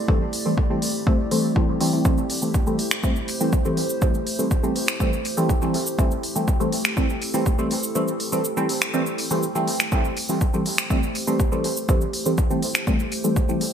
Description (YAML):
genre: dub techno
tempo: 122 BPM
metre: 4/4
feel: straight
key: A minor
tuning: A4 = 440 Hz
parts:
  - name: warbly tape-like pad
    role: sustained chords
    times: 0.0-13.7 s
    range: A3 to D5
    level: -31 LUFS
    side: equal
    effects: chorus, built-in reverb, sidechain pumping
  - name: deep mellow chord stab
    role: stabs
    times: 0.1-13.6 s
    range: E3 to C4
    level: -23 LUFS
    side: equal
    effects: chorus, phaser, sidechain pumping, dub echo
  - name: electronic kick drum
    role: drums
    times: 0.1-13.5 s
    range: none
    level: -22 LUFS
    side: equal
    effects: overdrive
  - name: deep house drum kit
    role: drums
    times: 0.3-13.7 s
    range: finger snaps, hi-hat, shaker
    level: -26 LUFS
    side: equal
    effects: gated reverb
room: moderate plate reverb, RT60 1.7 s, digital ambience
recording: bright 1980s-style digital production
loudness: -20 LUFS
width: side -8 dB against mid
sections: 0.0-9.9 A section; 9.9-13.7 A section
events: kick drops out 8.0-9.9; filter sweep on synth stab 9.9-13.7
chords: 0.0 Am7